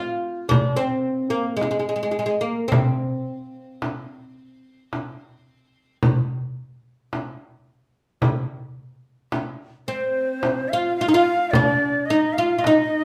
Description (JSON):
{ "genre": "Turkish makam ensemble", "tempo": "109 BPM (eighths)", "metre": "10/8", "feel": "straight", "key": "C makam ussak", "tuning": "A4 = 439 Hz", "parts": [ { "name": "oud", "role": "melody", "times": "0.0-13.0 s", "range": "Ab3 to F4", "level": "-24 LUFS", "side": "equal", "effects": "none" }, { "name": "frame drum", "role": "percussion", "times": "0.5-12.9 s", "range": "none", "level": "-25 LUFS", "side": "equal", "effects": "none" }, { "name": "breathy bright ney", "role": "second line", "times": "9.9-13.0 s", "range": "C5 to F5", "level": "-26 LUFS", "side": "equal", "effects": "none" } ], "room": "wet large studio reverb, RT60 0.9 s", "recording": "band playing live in one room", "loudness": "-22 LUFS", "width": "mono", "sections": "0.0-13.0 A section", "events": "none", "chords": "none", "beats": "0.51 1.06 1.62 2.17 | 2.72 3.27 3.82 4.37 4.92 5.47 6.03 6.58 7.13 7.68 | 8.23 8.78 9.33 9.88 10.43 10.98 11.53 12.08 12.63" }